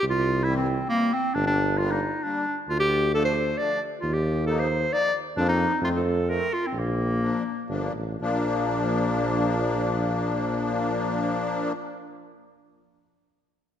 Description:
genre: alpine folk, alpine dance band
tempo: 114-136 BPM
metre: 3/4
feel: straight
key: Bb major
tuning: A4 = 440 Hz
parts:
  - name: bright clarinet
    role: melody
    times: 0.0-7.7 s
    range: Bb3 to D5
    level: -24 LUFS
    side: equal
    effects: none
  - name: mellow tuba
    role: bass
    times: 0.0-11.7 s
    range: G1 to F2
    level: -28 LUFS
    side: right 1 dB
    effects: none
  - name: musette accordion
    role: accompaniment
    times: 0.5-11.7 s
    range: E3 to Eb4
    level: -28 LUFS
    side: left 2 dB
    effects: none
room: moderate concert hall reverb, RT60 1.9 s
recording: none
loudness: -23 LUFS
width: side -9 dB against mid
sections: 0.0-8.2 A section; 8.2-11.3 B section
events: slowing down 5.4-8.2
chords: 0.0 C; 1.4 Gm; 2.7 Dm; 4.0 Ebsus2; 5.4 Fsus4; 5.8 F; 6.7 Bb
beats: | 0.03 0.47 0.91 | 1.36 1.80 2.25 | 2.70 3.15 3.59 | 4.04 4.48 4.92 | 5.36 5.80 6.26 | 6.72 7.20 7.69 | 8.21 8.73 9.25 | 9.76 10.27 10.79

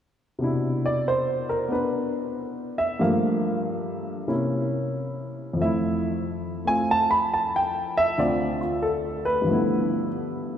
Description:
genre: jazz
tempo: 93 BPM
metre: 4/4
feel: swing 66% on 8ths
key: C major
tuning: A4 = 440 Hz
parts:
  - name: warm baby grand piano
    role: melody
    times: 0.4-10.6 s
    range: D2 to B5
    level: -22 LUFS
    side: equal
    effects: none
room: wet church reverb, RT60 3.6 s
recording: recorded in a church or concert hall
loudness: -22 LUFS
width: side -9 dB against mid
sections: 0.4-10.6 A section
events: none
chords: 0.4 Cmaj9; 3.0 Gm9; 4.3 C7b9; 5.6 Fmaj7; 8.2 Dm7; 9.5 G13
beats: | 0.40 1.05 1.70 2.35 | 3.00 3.64 4.29 4.94 | 5.59 6.23 6.88 7.53 | 8.18 8.82 9.47 10.12

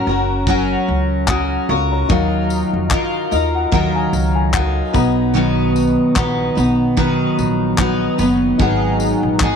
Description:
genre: acoustic pop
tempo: 74 BPM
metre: 4/4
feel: swing 55% on 16ths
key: unclear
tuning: A4 = 440 Hz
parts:
  - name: dark upright piano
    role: accompaniment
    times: 0.0-9.6 s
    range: C#4 to D#6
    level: -25 LUFS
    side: left 12 dB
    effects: none
  - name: picked steel-string acoustic guitar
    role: accompaniment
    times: 0.0-9.6 s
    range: G#2 to B4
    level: -16 LUFS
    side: equal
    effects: double-tracked left and right
  - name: upright bass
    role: bass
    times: 0.1-9.6 s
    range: F#1 to D#3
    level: -21 LUFS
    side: equal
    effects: none
  - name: modern studio drum kit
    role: drums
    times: 0.5-9.6 s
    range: handclaps, kick drum, tambourine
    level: -21 LUFS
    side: left 1 dB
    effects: none
room: light reverb, small room ambience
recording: 1960s-style stereo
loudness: -14 LUFS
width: side -6 dB against mid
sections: 0.0-9.6 A section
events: upright piano fill 2.9-5.3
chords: 0.0 F#; 2.1 D#madd9; 4.9 B; 8.6 G#m7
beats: 0.47 1.29 | 2.10 2.91 3.73 4.54 | 5.35 6.16 6.97 7.79 | 8.60 9.41

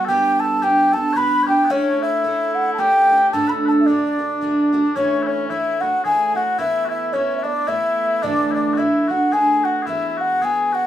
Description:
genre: celtic folk, Celtic waltz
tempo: 110 BPM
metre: 3/4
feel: swing 57% on 8ths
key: D major, A major from 5.0 s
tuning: A4 = 440 Hz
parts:
  - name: mellow baroque flute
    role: melody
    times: 0.0-10.9 s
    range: C#5 to B5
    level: -18 LUFS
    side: equal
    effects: none
  - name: mellow small bagpipes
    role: second line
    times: 0.0-10.9 s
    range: B3 to C#5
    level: -25 LUFS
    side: left 2 dB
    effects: none
  - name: picked steel-string acoustic guitar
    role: accompaniment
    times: 0.0-10.9 s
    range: D2 to A4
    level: -22 LUFS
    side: right 2 dB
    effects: none
room: wet studio reverb, RT60 0.5 s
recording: band playing live in one room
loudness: -16 LUFS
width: side -11 dB against mid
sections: 0.0-5.0 A section; 5.0-10.9 B section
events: none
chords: 0.1 G; 1.7 A; 3.3 D; 5.0 A; 6.6 Esus4; 8.2 Dadd9; 9.9 Eadd9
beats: | 0.08 0.62 1.17 | 1.71 2.25 2.79 | 3.34 3.88 4.42 | 4.97 5.51 6.05 | 6.60 7.14 7.68 | 8.23 8.77 9.32 | 9.86 10.41

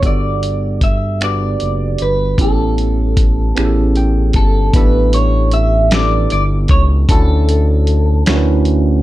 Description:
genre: slow six-eight R&B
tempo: 51 BPM (dotted quarters)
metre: 6/8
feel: straight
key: unclear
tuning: A4 = 440 Hz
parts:
  - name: tine electric piano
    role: accompaniment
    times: 0.0-9.0 s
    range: B3 to A5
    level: -20 LUFS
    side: right 2 dB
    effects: phaser
  - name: smooth synth bass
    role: bass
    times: 0.0-9.0 s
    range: F#1 to D2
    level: -14 LUFS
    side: equal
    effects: none
  - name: dusty soul sampler-style drum kit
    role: drums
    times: 0.0-8.8 s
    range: finger snaps, hi-hat, kick drum, snare drum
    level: -15 LUFS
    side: equal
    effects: none
  - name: electric guitar at the edge of break-up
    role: melody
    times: 0.1-8.2 s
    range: A4 to E5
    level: -19 LUFS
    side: equal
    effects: phaser
room: light reverb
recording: dark, warm production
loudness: -11 LUFS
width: side -15 dB against mid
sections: 0.0-4.7 A section; 4.7-9.0 B section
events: tine electric piano fill 3.6-4.7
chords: 0.0 Gmaj7; 2.4 A7; 4.7 A9sus4; 7.1 Dmaj7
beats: | 0.03 1.21 | 2.38 3.56 | 4.74 5.91 | 7.09 8.27

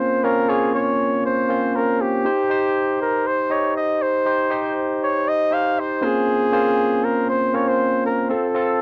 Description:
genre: pop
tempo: 119 BPM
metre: 4/4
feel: straight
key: Bb dorian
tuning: A4 = 442 Hz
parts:
  - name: warm flugelhorn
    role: melody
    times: 0.0-8.8 s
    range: G4 to F5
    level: -23 LUFS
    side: equal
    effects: none
  - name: barky tine electric piano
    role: accompaniment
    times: 0.0-8.8 s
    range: Bb3 to Eb5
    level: -23 LUFS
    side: equal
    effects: none
room: moderate booth ambience, RT60 0.2 s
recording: dark, warm production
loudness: -20 LUFS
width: mono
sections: 0.0-8.8 A section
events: none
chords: 0.0 Bbmadd9; 2.2 Cm; 6.0 Bbmadd9; 8.3 F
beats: | 0.23 0.73 1.24 1.74 | 2.25 2.75 3.26 3.76 | 4.26 4.77 5.27 5.78 | 6.28 6.79 7.29 7.79 | 8.30 8.80

